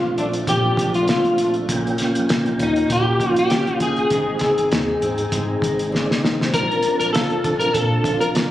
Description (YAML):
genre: indie pop, bedroom pop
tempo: 99 BPM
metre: 4/4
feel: swing 55% on 16ths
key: Bb major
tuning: A4 = 440 Hz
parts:
  - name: electric guitar at the edge of break-up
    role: melody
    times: 0.0-8.3 s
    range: D4 to Bb4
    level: -20 LUFS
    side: left 1 dB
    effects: ensemble chorus, tape echo
  - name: mellow tonewheel organ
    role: accompaniment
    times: 0.0-8.5 s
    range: Ab3 to A5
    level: -24 LUFS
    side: right 2 dB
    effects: chorus vibrato, fast rotary speaker, cassette tape
  - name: picked steel-string acoustic guitar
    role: accompaniment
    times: 0.0-8.5 s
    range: Ab2 to F4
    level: -28 LUFS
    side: left 3 dB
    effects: lush chorus, vibrato effect
  - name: warm sub bass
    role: bass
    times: 0.0-8.5 s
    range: F1 to Bb2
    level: -27 LUFS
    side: equal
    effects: none
  - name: cloth-damped thuddy drum kit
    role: drums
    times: 0.2-8.5 s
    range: hi-hat, kick drum, snare drum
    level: -24 LUFS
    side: equal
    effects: none
room: light reverb, small room ambience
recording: recorded on a phone in the room, club reverb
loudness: -17 LUFS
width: side -13 dB against mid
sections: 0.0-8.5 A section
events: drum fill 5.9-6.5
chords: 0.0 Bbmaj7; 1.7 Eb7/Bb; 4.1 Ab; 6.5 Bbmaj7